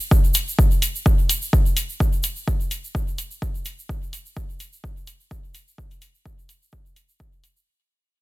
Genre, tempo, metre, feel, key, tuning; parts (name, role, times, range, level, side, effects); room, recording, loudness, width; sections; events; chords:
techno; 127 BPM; 4/4; swing 54% on 16ths
egg shaker; percussion; 0.0-7.7 s; -28 LUFS; right 2 dB
electronic kick drum; drums; 0.1-7.3 s; -19 LUFS; equal
electronic hi-hat; drums; 0.3-7.5 s; -28 LUFS; left 2 dB
little or no reverb; dense, heavily limited modern master; -19 LUFS; side -19 dB against mid
0.0-7.7 A section
fade-out 0.0-7.7